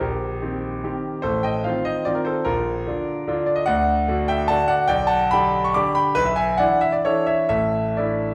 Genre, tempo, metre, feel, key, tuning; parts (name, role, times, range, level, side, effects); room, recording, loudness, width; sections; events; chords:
classical, romantic triple-time dance for piano with dotted rhythms; 122-156 BPM; 3/4; rubato; Bb major, D major from 3.7 s; A4 = 440 Hz
clear concert grand piano; solo; 0.0-8.3 s; A1 to D6; -21 LUFS; equal
wet recital hall reverb, RT60 1.4 s; recorded in a church or concert hall; -21 LUFS; mono
0.0-8.3 A section
0.0 Cm7/Bb; 1.2 F7/A; 2.5 Bb; 3.7 D; 4.9 G/B; 6.2 E5/B; 7.5 Asus4